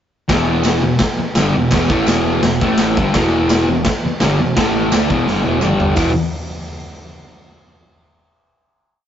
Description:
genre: garage rock duo or trio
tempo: 169 BPM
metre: 4/4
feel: straight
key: unclear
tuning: A4 = 440 Hz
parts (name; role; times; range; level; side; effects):
- fuzz guitar; riff; 0.3-6.1 s; E2 to D4; -16 LUFS; equal; distortion
- growling picked electric bass; bass; 0.3-6.1 s; E1 to D2; -24 LUFS; equal; overdrive
- raw garage drum kit; drums; 0.3-6.1 s; crash cymbal, hi-hat, kick drum, snare drum, toms; -18 LUFS; equal; none
- tambourine; percussion; 0.6-6.1 s; none; -32 LUFS; right 5 dB; none
room: light reverb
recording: rough rehearsal-room recording, tube saturation, nothing above 7.7 kHz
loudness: -13 LUFS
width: side -9 dB against mid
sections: 0.3-6.0 riff; 6.0-7.4 final chord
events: drum fill 5.3-6.0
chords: 0.3 E5; 2.6 A5; 3.0 E5; 4.6 A5; 4.9 E5; 5.6 G5; 6.0 E5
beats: | 0.29 0.65 1.00 1.36 | 1.72 2.07 2.43 2.79 | 3.15 3.50 3.86 4.21 | 4.57 4.92 5.27 5.62 | 5.97

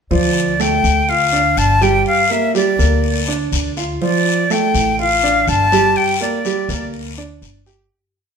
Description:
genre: latin, Cuban son and guajira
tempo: 123 BPM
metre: 4/4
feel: straight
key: D minor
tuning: A4 = 436 Hz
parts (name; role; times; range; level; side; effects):
- silver concert flute; melody; 0.1-6.9 s; D5 to A5; -16 LUFS; left 2 dB; none
- warm concert grand piano; arpeggios; 0.1-7.9 s; F3 to G5; -18 LUFS; right 4 dB; none
- upright bass; bass; 0.1-7.8 s; G1 to D2; -20 LUFS; left 1 dB; none
- guiro; percussion; 0.1-7.9 s; none; -26 LUFS; left 6 dB; none
room: wet stone room reverb, RT60 1.0 s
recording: band playing live in one room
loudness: -13 LUFS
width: side -6 dB against mid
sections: 0.1-7.9 montuno (vamp)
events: fade-out 6.0-7.9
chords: 0.1 Dm; 2.1 Gm; 4.0 Dm; 6.0 Gm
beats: | 0.11 0.60 1.09 1.58 | 2.06 2.55 3.04 3.53 | 4.02 4.50 4.99 5.48 | 5.96 6.45 6.94 7.42

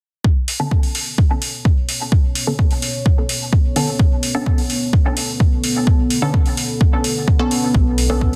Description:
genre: dub techno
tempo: 128 BPM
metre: 4/4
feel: straight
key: B minor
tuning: A4 = 439 Hz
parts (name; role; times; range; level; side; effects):
- deep dark ambient pad; sustained chords; 1.6-8.4 s; D3 to C#5; -26 LUFS; equal; chorus, built-in reverb, sidechain pumping
- electronic kick drum; drums; 0.2-8.3 s; none; -17 LUFS; equal; overdrive
- electronic hi-hat; drums; 0.5-8.4 s; none; -25 LUFS; equal; overdrive
- filtered dub chord stab; stabs; 0.6-8.4 s; D3 to A4; -26 LUFS; equal; phaser, sidechain pumping, dub echo
- warm sub bass; bass; 7.7-8.4 s; B1; -22 LUFS; equal; sidechain pumping
room: light reverb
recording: dense, heavily limited modern master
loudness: -17 LUFS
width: mono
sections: 0.2-8.4 A section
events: none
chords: 0.2 Bm9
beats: | 0.24 0.71 1.18 1.65 | 2.12 2.59 3.06 3.53 | 4.00 4.46 4.93 5.40 | 5.87 6.34 6.81 7.28 | 7.75 8.21

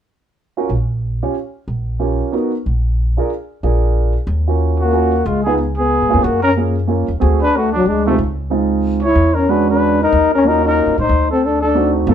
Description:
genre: jazz, small-group swing and bop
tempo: 185 BPM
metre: 3/4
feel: swing 62% on 8ths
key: unclear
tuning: A4 = 439 Hz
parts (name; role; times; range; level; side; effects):
- warm grand piano; accompaniment; 0.6-12.1 s; G#3 to Db5; -18 LUFS; right 4 dB; none
- upright bass; bass; 0.7-12.1 s; G1 to A2; -18 LUFS; equal; none
- breathy trombone; melody; 4.8-11.9 s; C3 to Fb4; -16 LUFS; left 4 dB; none
- breathy trumpet; second line; 4.8-11.9 s; A3 to Db5; -19 LUFS; right 1 dB; none
room: light reverb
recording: band playing live in one room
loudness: -14 LUFS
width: side -9 dB against mid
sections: 0.4-4.3 A section; 4.3-12.1 B section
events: none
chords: 0.4 Bbm6; 2.3 Abm7 (rootless); 3.3 Bb7; 4.3 Ebm7; 5.3 Db7; 6.2 Gbmaj7; 7.2 D7#11; 8.2 Dbmaj7; 9.2 E13; 10.1 Ebm7; 11.1 D7b9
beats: | 0.38 0.70 1.03 | 1.35 1.68 2.00 | 2.33 2.65 2.98 | 3.31 3.63 3.96 | 4.28 4.61 4.93 | 5.26 5.58 5.91 | 6.23 6.56 6.88 | 7.21 7.53 7.86 | 8.18 8.50 8.83 | 9.15 9.48 9.80 | 10.13 10.45 10.78 | 11.10 11.43 11.75 | 12.07

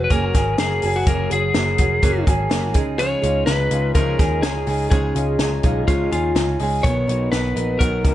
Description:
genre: jangly indie pop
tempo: 125 BPM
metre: 4/4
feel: straight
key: Db mixolydian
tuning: A4 = 438 Hz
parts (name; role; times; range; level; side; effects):
- lightly driven lead guitar; melody; 0.0-8.1 s; F4 to Db5; -23 LUFS; left 2 dB; digital delay
- picked old ladder-braced acoustic guitar; accompaniment; 0.0-8.1 s; Cb3 to Bb4; -26 LUFS; right 7 dB; none
- electric guitar through a small old amp; arpeggios; 0.0-8.1 s; Db3 to Bb4; -26 LUFS; left 2 dB; none
- vintage muted picked electric bass; bass; 0.0-8.1 s; F1 to Eb2; -23 LUFS; equal; none
- compact cocktail drum kit; drums; 0.1-8.1 s; hi-hat, kick drum, snare drum; -20 LUFS; equal; none
room: light reverb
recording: nothing above 10.5 kHz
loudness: -17 LUFS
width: side -13 dB against mid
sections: 0.0-8.1 A section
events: none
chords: 0.0 Gbadd9; 2.8 Dbadd9; 6.8 Cbmaj7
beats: 0.11 0.59 | 1.07 1.55 2.03 2.51 | 2.99 3.47 3.96 4.44 | 4.92 5.40 5.88 6.36 | 6.84 7.33 7.81

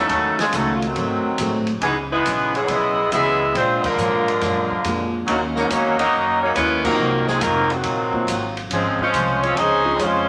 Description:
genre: jazz, big band swing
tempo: 140 BPM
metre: 4/4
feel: swing 67% on 8ths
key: unclear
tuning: A4 = 441 Hz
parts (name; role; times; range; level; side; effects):
- warm saxophone section; melody; 0.0-10.3 s; D#3 to E5; -23 LUFS; equal; none
- muted trombone section; second line; 0.0-10.3 s; A#2 to E4; -24 LUFS; equal; none
- upright bass; bass; 0.0-10.3 s; E#1 to A#2; -33 LUFS; equal; none
- picked steel-string acoustic guitar; accompaniment; 0.1-10.3 s; G#2 to F#4; -31 LUFS; equal; none
- open jazz drum kit; drums; 0.1-10.1 s; crash cymbal, hi-hat, kick drum, ride cymbal, snare drum; -33 LUFS; equal; none
- dark concert grand piano; accompaniment; 1.4-10.0 s; E3 to G#4; -30 LUFS; equal; none
room: wet large studio reverb, RT60 1.2 s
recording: none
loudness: -20 LUFS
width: mono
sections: 0.0-10.3 A section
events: band accent 3.8, 6.8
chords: 0.1 D#m7b5; 1.0 G#7b9; 1.8 C#m11; 3.5 A#7b13; 5.3 D#m7; 7.0 G#13; 8.7 C#maj7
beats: | 0.10 0.53 0.96 1.39 | 1.82 2.25 2.69 3.12 | 3.55 3.98 4.41 4.83 | 5.26 5.69 6.12 6.55 | 6.98 7.41 7.84 8.27 | 8.70 9.13 9.55 9.98

